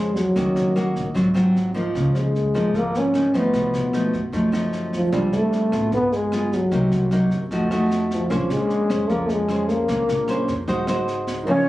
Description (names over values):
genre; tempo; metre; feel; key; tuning
bossa nova; 151 BPM; 4/4; straight; Bb minor; A4 = 440 Hz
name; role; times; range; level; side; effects
breathy trombone; melody; 0.0-11.7 s; F3 to Db4; -21 LUFS; equal; none
nylon-string guitar; accompaniment; 0.0-11.7 s; F#2 to C5; -22 LUFS; equal; none
upright bass; bass; 0.0-11.4 s; G1 to F#2; -28 LUFS; equal; none
jazz brush drum kit; drums; 0.2-11.3 s; kick drum, rim click, snare drum; -33 LUFS; equal; none
warm concert grand piano; accompaniment; 11.4-11.7 s; Eb4 to F5; -27 LUFS; right 2 dB; none
bright silver concert flute; second line; 11.5-11.7 s; Db5; -26 LUFS; left 1 dB; none
room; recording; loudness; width
light reverb; recorded on a phone in the room, club reverb, compression; -19 LUFS; side -16 dB against mid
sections
0.0-11.5 A section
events
none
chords
0.4 Ebm7; 1.2 Ab13; 1.9 Db69; 3.5 B7#11; 5.1 Bb69; 5.9 G7b9; 6.7 Cm7b5; 7.5 F7b9; 8.3 Bbm9; 10.7 Ab7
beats
| 0.36 0.76 1.15 1.55 | 1.95 2.35 2.74 3.14 | 3.54 3.94 4.33 4.73 | 5.13 5.52 5.92 6.32 | 6.71 7.11 7.51 7.90 | 8.30 8.70 9.09 9.49 | 9.88 10.28 10.67 11.07 | 11.46